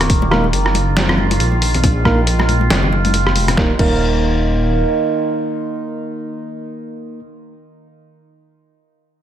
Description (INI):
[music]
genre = deep dubstep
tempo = 138 BPM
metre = 4/4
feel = swing 58% on 16ths, half-time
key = Eb minor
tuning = A4 = 440 Hz
[part]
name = overtone-sweeping drone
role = sustained chords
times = 0.0-7.0 s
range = Eb3 to F4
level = -22 LUFS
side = right 2 dB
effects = chorus, built-in reverb
[part]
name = dark detuned saw bass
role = bass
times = 0.0-4.8 s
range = Eb1 to Bb1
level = -17 LUFS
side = equal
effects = none
[part]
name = trip hop sampler-style drum kit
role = drums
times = 0.0-3.9 s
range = crash cymbal, hi-hat, rim click, snare drum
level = -20 LUFS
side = left 1 dB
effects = none
[part]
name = congas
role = percussion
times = 0.0-3.6 s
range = none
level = -23 LUFS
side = left 3 dB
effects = dub echo
[part]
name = electronic kick drum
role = drums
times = 0.1-3.9 s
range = none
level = -17 LUFS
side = equal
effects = none
[part]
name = tine electric piano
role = stabs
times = 0.3-7.2 s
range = Bb3 to Bb4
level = -22 LUFS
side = right 2 dB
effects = dub echo
[sound]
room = light reverb, digital ambience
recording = none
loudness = -13 LUFS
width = side -10 dB against mid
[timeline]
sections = 0.0-3.6 A section; 3.6-7.1 B section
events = drop 0.0-3.6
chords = 0.0 Eb5